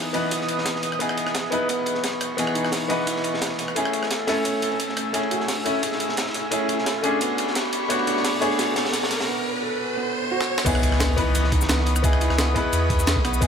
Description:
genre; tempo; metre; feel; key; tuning
liquid drum and bass; 174 BPM; 4/4; straight; C# minor; A4 = 439 Hz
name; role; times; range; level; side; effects
clear baby grand piano; accompaniment; 0.0-13.5 s; E3 to D#5; -25 LUFS; left 2 dB; tape echo
airy breathy pad; sustained chords; 0.0-13.5 s; A3 to E6; -32 LUFS; left 1 dB; chorus
felt-muted upright piano; arpeggios; 0.0-13.5 s; B3 to A4; -30 LUFS; right 4 dB; ping-pong delay
warm sub bass; bass; 0.0-13.5 s; E1 to E2; -22 LUFS; equal; tube saturation, high-pass filter
riser and impact; sound effects; 0.0-12.0 s; none; -32 LUFS; right 1 dB; none
breakbeat sampler-style drum kit; drums; 0.1-13.5 s; crash cymbal, hi-hat, rim click, shaker, snare drum; -28 LUFS; equal; high-pass filter on hats, high-pass filter on snare, high-pass filter on cymbals, high-pass filter on perc, high-pass filter on room
crunchy breakbeat drum kit; drums; 0.1-13.5 s; hi-hat, ride cymbal, snare drum; -30 LUFS; equal; high-pass filter on cymbals, high-pass filter on hats, high-pass filter on snare, high-pass filter on room
electronic kick drum; drums; 0.3-13.5 s; none; -27 LUFS; equal; none
room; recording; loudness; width
light reverb, small room ambience; none; -20 LUFS; side -7 dB against mid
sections
0.0-10.7 A section; 10.7-13.5 B section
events
build-up 0.0-10.7; riser 0.0-10.7; filter sweep on analog synth pad 0.0-10.7; drum fill 5.1-9.3, 10.4; break 9.3-10.7; drop 10.7-13.5; impact 10.7-12.0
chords
0.0 C#m9; 3.8 F#m9; 7.2 Bm9; 10.7 C#m9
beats
0.31 0.66 | 1.00 1.35 1.69 2.04 | 2.38 2.73 3.07 3.42 | 3.76 4.11 4.45 4.80 | 5.14 5.49 5.83 6.18 | 6.52 6.87 7.21 7.55 | 7.90 8.24 8.59 8.94 | 9.28 9.62 9.97 10.31 | 10.66 11.00 11.35 11.69 | 12.04 12.38 12.73 13.07 | 13.42

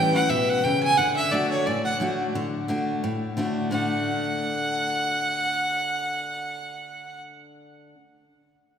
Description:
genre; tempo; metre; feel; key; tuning
bluegrass; 176 BPM; 4/4; swing 56% on 8ths; D major; A4 = 440 Hz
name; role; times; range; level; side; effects
clear fiddle; melody; 0.0-7.2 s; C#5 to G#5; -24 LUFS; right 2 dB; none
picked steel-string acoustic guitar; accompaniment; 0.0-8.0 s; A2 to F#4; -26 LUFS; left 2 dB; none
room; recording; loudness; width
wet church reverb, RT60 3.1 s; recorded in a church or concert hall; -22 LUFS; side -8 dB against mid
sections
0.0-2.3 A section; 2.3-3.7 B section; 3.7-6.4 C section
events
none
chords
0.0 A7; 1.0 D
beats
0.30 0.64 | 0.98 1.32 1.66 2.00 | 2.35 2.69 3.03 3.37 | 3.71 4.05 4.39 4.73 | 5.07 5.42 5.76 6.10

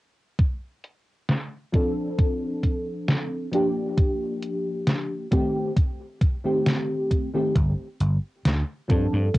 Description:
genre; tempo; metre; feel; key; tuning
vaporwave; 67 BPM; 4/4; straight; G minor; A4 = 439 Hz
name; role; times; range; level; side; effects
detuned 8-bit digital drum machine; drums; 0.4-9.4 s; hi-hat, snare drum; -24 LUFS; equal; low-pass filter on hats, low-pass filter on snare, low-pass filter on room
electronic kick drum; drums; 0.4-9.4 s; none; -22 LUFS; equal; none
mellow FM electric piano; accompaniment; 1.7-9.4 s; Eb3 to A4; -25 LUFS; equal; ensemble chorus, cassette tape, analog delay
vintage slap bass; bass; 7.6-9.4 s; G1 to G2; -23 LUFS; equal; none
room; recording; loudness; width
light reverb; home recording on cassette, nothing above 10.8 kHz; -22 LUFS; side -18 dB against mid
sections
0.4-9.4 A section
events
none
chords
0.4 F6; 2.2 Dm7; 4.0 Gm7; 5.3 Am7b5; 7.6 G5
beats
| 0.40 1.29 2.19 3.08 | 3.98 4.87 5.77 6.66 | 7.56 8.45 9.35

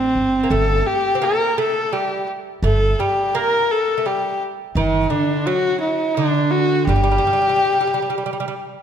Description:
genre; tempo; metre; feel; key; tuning
persian; 85 BPM; 3/4; straight; G avaz esfahan; A4 = 439 Hz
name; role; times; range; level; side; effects
warm kamancheh; melody; 0.0-8.6 s; C4 to Bb4; -18 LUFS; left 1 dB; slapback echo
upright bass; bass; 0.0-7.2 s; G1 to A1; -21 LUFS; right 1 dB; none
lute; second line; 0.4-8.5 s; D3 to C4; -24 LUFS; right 5 dB; none
room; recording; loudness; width
moderate concert hall reverb, RT60 1.8 s; none; -16 LUFS; side -8 dB against mid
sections
0.0-8.8 A section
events
none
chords
none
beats
| 0.51 1.22 1.93 | 2.63 3.34 4.05 | 4.75 5.46 6.17 | 6.88 7.58 8.29

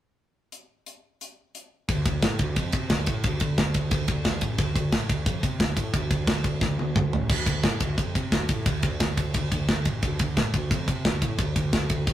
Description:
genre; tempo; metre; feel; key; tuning
heavy metal; 177 BPM; 4/4; straight; D minor; A4 = 440 Hz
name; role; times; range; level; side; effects
tight metal drum kit; drums; 0.5-12.1 s; crash cymbal, hi-hat, kick drum, ride cymbal, snare drum, toms; -24 LUFS; equal; none
fuzz picked electric bass; bass; 1.9-12.1 s; A1 to C3; -29 LUFS; equal; overdrive
room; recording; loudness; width
light reverb; rough rehearsal-room recording; -23 LUFS; side -12 dB against mid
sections
0.5-1.9 A section; 1.9-12.1 B section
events
drum fill 6.6-7.3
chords
none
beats
| 0.54 0.88 1.22 1.55 | 1.89 2.23 2.57 2.91 | 3.25 3.59 3.93 4.27 | 4.61 4.94 5.28 5.62 | 5.96 6.30 6.64 6.98 | 7.32 7.66 8.00 8.34 | 8.67 9.01 9.35 9.69 | 10.03 10.38 10.71 11.05 | 11.40 11.74 12.08

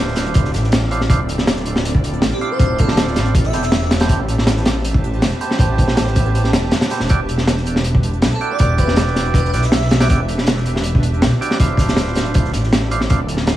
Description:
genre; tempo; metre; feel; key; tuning
drum and bass, jungle; 160 BPM; 4/4; straight; unclear; A4 = 440 Hz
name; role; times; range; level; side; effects
percussive tonewheel organ; stabs; 0.0-13.2 s; A3 to D5; -25 LUFS; right 4 dB; overdrive, dub echo
detuned saw bass; bass; 0.0-13.6 s; D1 to B1; -19 LUFS; equal; none
damped 70s drum kit; drums; 0.1-13.6 s; hi-hat, snare drum; -33 LUFS; right 1 dB; high-pass filter on hats, high-pass filter on snare, high-pass filter on room
crunchy breakbeat drum kit; drums; 0.2-13.6 s; hi-hat, kick drum, snare drum; -16 LUFS; equal; none
airy dreamy lead; melody; 2.3-4.0, 8.3-10.2 s; G4 to E5; -26 LUFS; left 1 dB; chorus, dub echo
room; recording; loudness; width
studio ambience; vinyl crackle, small room ambience; -14 LUFS; side -14 dB against mid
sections
0.0-13.6 A section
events
none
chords
0.0 Dm9; 3.3 Am9; 7.1 Em9; 11.6 Dm9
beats
0.35 0.72 | 1.10 1.47 1.85 2.22 | 2.60 2.97 3.35 3.72 | 4.10 4.47 4.85 5.22 | 5.60 5.97 6.35 6.72 | 7.10 7.47 7.85 8.22 | 8.60 8.97 9.35 9.72 | 10.10 10.47 10.85 11.22 | 11.60 11.97 12.35 12.72 | 13.10 13.47

